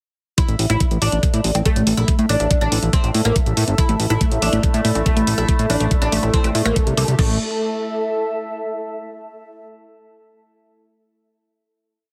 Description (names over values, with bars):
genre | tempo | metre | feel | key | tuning
psychedelic trance | 141 BPM | 4/4 | straight | A minor | A4 = 440 Hz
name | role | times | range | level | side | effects
oud | melody | 0.4-7.3 s | A3 to E4 | -26 LUFS | equal | phaser, sidechain pumping, tape echo
drum and bass drum kit | drums | 0.4-7.3 s | crash cymbal, hi-hat | -28 LUFS | equal | none
electronic kick drum | drums | 0.4-7.3 s | none | -20 LUFS | equal | none
granular cloud pad | texture | 1.2-8.8 s | A4 to A5 | -30 LUFS | equal | built-in reverb, sidechain pumping
fat analog bass | bass | 0.5-7.4 s | G1 to A2 | -22 LUFS | equal | tube saturation
metallic wobble bass | second line | 1.5-7.2 s | C4 to G4 | -35 LUFS | equal | ensemble chorus, sidechain pumping, high-pass filter, tape echo
overtone-sweeping drone | sustained chords | 4.3-7.2 s | A3 to E4 | -32 LUFS | equal | chorus, built-in reverb, sidechain pumping
woody wave-folded pluck | riff | 3.8-7.4 s | G3 to A4 | -28 LUFS | equal | chorus, sidechain pumping, tape echo
room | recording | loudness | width
light reverb | heavily compressed radio sound, multiband compression | -18 LUFS | mono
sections
0.4-7.2 groove; 7.2-8.9 final chord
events
none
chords
0.4 A5